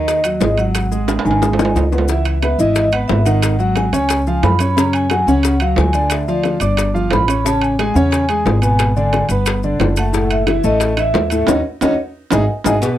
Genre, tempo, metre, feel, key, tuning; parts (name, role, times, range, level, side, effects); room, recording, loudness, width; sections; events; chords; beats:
Afro-Cuban jazz; 179 BPM; 4/4; straight; C# minor; A4 = 440 Hz
vibraphone with medium mallets; melody; 0.0-12.8 s; C#5 to B5; -20 LUFS; equal
clear grand piano; accompaniment; 0.0-13.0 s; A2 to D6; -18 LUFS; equal
upright bass; bass; 0.0-12.8 s; F#1 to F#2; -18 LUFS; equal
bongos and cowbell; percussion; 0.1-13.0 s; -22 LUFS; left 7 dB
maracas; percussion; 0.1-13.0 s; -31 LUFS; left 13 dB
timbales and agogo bells; percussion; 0.1-13.0 s; -22 LUFS; right 6 dB
little or no reverb; dry, close 1970s-style studio recording; -13 LUFS; side -12 dB against mid
0.0-2.1 A section; 2.1-12.8 B section
drum fill 1.1-2.1, 12.2-12.8; band accent 11.5-12.8
0.0 G#5; 2.1 C#m9; 3.4 G#7sus4; 4.1 C#7; 4.8 F#sus2; 6.1 Dm; 6.8 G9; 7.5 Amaj9; 8.8 G#dim; 9.5 Gadd9; 10.1 F#m7; 11.5 D#m7; 12.2 G#5
0.07 0.41 | 0.74 1.08 1.42 1.75 | 2.09 2.42 2.76 3.09 | 3.43 3.76 4.10 4.43 | 4.77 5.10 5.44 5.77 | 6.11 6.45 6.78 7.12 | 7.45 7.79 8.12 8.46 | 8.79 9.13 9.47 9.80 | 10.14 10.47 10.81 11.15 | 11.48 11.82 12.15 12.49 | 12.82